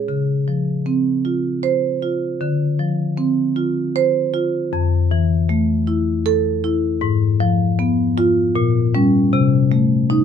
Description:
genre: classical, contemporary piece for solo marimba.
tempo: 78 BPM.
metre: 3/4.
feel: rubato.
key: unclear.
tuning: A4 = 440 Hz.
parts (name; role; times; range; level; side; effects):
marimba with soft mallets; solo; 0.0-10.2 s; F2 to C5; -16 LUFS; left 1 dB; none.
room: light reverb.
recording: none.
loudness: -16 LUFS.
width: side -8 dB against mid.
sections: 0.0-10.2 A section.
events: none.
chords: 0.1 Dbmaj7; 2.4 Dm7; 4.7 Fmaj7; 7.0 Abm6; 8.6 Bbm6; 9.3 Cm6.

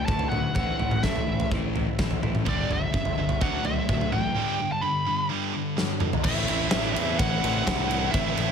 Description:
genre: quiet-loud alternative rock.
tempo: 127 BPM.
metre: 4/4.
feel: straight.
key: A dorian.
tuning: A4 = 441 Hz.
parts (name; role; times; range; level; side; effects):
biting lead guitar; melody; 0.0-8.5 s; D5 to B5; -30 LUFS; equal; overdrive.
semi-hollow electric guitar; arpeggios; 0.0-2.5 s; A2 to E4; -34 LUFS; right 6 dB; wide subtle chorus.
thick fuzz guitar; riff; 0.0-8.5 s; G2 to E4; -31 LUFS; left 12 dB; distortion.
fuzz fingered electric bass; bass; 0.1-8.5 s; G1 to A2; -31 LUFS; equal; overdrive.
big rock drum kit; drums; 0.1-8.5 s; crash cymbal, kick drum, ride cymbal, snare drum, toms; -27 LUFS; equal; none.
heavy high-gain guitar; riff; 2.5-8.5 s; G2 to E4; -30 LUFS; right 15 dB; distortion.
room: light reverb.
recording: none.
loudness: -23 LUFS.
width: side -7 dB against mid.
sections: 0.0-6.3 A section; 6.3-8.5 B section.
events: drum fill 5.8-6.3.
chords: 0.0 Dadd9; 0.6 Am; 2.5 G5; 3.4 Dadd9; 4.4 G; 6.3 Am.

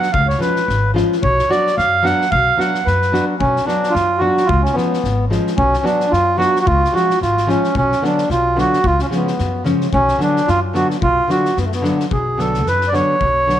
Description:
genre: balkan folk, Balkan wedding band.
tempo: 110 BPM.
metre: 2/4.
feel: swing 56% on 16ths.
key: B dorian sharp4.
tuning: A4 = 440 Hz.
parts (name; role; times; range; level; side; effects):
mellow accordion; melody; 0.0-13.6 s; A3 to F#5; -16 LUFS; right 1 dB; none.
nylon-string guitar; accompaniment; 0.0-13.6 s; C#3 to F#4; -21 LUFS; left 1 dB; none.
loose indie drum kit; percussion; 0.0-13.6 s; kick drum, snare drum; -28 LUFS; left 4 dB; none.
upright bass; bass; 0.1-13.6 s; G#1 to F#2; -20 LUFS; left 1 dB; none.
room: moderate echo chamber reverb, RT60 2.5 s.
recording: 1960s-style stereo.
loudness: -14 LUFS.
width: side -11 dB against mid.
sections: 0.0-3.4 A section; 3.4-12.1 A section; 12.1-13.6 B section.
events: accordion solo 12.1-13.6.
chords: 0.1 C#; 1.2 Bm; 4.5 C#; 5.6 Bm; 6.7 C#; 7.7 Bm; 8.8 C#; 9.9 Bm.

